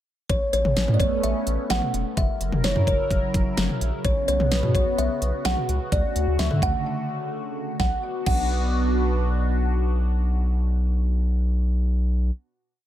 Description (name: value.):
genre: synth-pop.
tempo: 128 BPM.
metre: 4/4.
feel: straight.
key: B minor.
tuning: A4 = 440 Hz.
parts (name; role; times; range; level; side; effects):
kalimba; melody; 0.3-12.3 s; C#5 to F#5; -27 LUFS; equal; analog delay.
phased analog pad; sustained chords; 0.5-11.9 s; B2 to A#4; -29 LUFS; equal; phaser, chorus.
round analog bass; bass; 0.3-12.3 s; E1 to D3; -23 LUFS; equal; none.
pop drum kit; drums; 0.3-8.4 s; crash cymbal, hi-hat, kick drum, snare drum, toms; -25 LUFS; equal; none.
room: light reverb, digital ambience.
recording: echo-heavy mix.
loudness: -21 LUFS.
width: side -12 dB against mid.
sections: 0.3-7.8 pre-chorus; 7.8-11.5 final chord.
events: break 6.9-7.8.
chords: 0.3 Aadd9; 2.2 F#7; 4.0 Bsus2; 5.9 Dmaj7; 7.8 Bm.